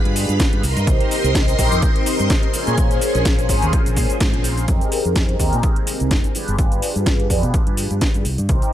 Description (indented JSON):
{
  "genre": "filtered disco house",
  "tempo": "126 BPM",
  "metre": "4/4",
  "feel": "swing 56% on 16ths",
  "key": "F minor",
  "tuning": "A4 = 442 Hz",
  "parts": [
    { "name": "mellow synth brass", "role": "accompaniment", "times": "0.0-8.7 s", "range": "C4 to C5", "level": "-23 LUFS", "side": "equal", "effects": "chorus, phaser, vintage 12-bit sampler grit, sidechain pumping, low-pass filter" },
    { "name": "string machine, full ensemble", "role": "sustained chords", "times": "0.0-4.7 s", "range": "Ab3 to C6", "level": "-25 LUFS", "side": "left 1 dB", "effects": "phaser, ensemble chorus, sidechain pumping, low-pass filter" },
    { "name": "fingered electric bass", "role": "bass", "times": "0.0-8.6 s", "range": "G1 to C3", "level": "-22 LUFS", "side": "equal", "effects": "sidechain pumping, low-pass filter" },
    { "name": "house drum kit", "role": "drums", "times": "0.1-8.7 s", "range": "hi-hat, shaker, snare drum", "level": "-24 LUFS", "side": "equal", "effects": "overdrive, sidechain pumping on hats, sidechain pumping on perc" },
    { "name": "electronic kick drum", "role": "drums", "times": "0.4-8.6 s", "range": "none", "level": "-18 LUFS", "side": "equal", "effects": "none" }
  ],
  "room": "little or no reverb",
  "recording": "none",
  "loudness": "-16 LUFS",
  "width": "side -12 dB against mid",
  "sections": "0.0-4.7 A section; 4.7-8.7 B section",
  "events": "drop 0.0-4.7; band accent 4.2; filter sweep 4.7-8.7",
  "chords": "0.0 G7b9; 0.6 Cm7; 2.5 Bbm9; 4.7 Fm11; 6.3 G7b9"
}